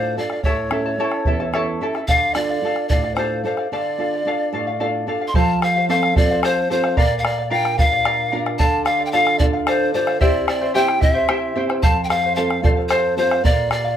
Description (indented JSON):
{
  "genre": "andean folk, Andean ensemble",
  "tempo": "74 BPM (dotted quarters)",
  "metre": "6/8",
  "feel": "straight",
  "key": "D minor",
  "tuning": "A4 = 442 Hz",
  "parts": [
    { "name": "hollow pan flute", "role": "melody", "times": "0.0-14.0 s", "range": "C5 to C6", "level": "-20 LUFS", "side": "equal", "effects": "none" },
    { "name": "charango", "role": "accompaniment", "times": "0.0-14.0 s", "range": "E4 to A5", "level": "-23 LUFS", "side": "left 3 dB", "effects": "none" },
    { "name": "nylon-string guitar", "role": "accompaniment", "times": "0.0-14.0 s", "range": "E2 to Bb4", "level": "-24 LUFS", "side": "right 3 dB", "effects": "none" },
    { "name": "bombo", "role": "percussion", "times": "0.3-13.9 s", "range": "none", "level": "-20 LUFS", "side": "equal", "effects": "none" }
  ],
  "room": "wet small room ambience, RT60 0.5 s",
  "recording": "none",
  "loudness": "-16 LUFS",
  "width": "side -10 dB against mid",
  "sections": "0.0-5.3 A section; 5.3-14.0 B section",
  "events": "break 3.7-5.3",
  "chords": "0.4 A; 2.1 Dm; 5.3 F; 7.0 Bb; 8.6 Dm; 10.2 C; 11.8 F; 13.4 Bb",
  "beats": "| 0.45 1.27 | 2.09 2.90 | 3.72 4.54 | 5.35 6.16 | 6.97 7.79 | 8.60 9.41 | 10.21 11.02 | 11.83 12.64 | 13.45"
}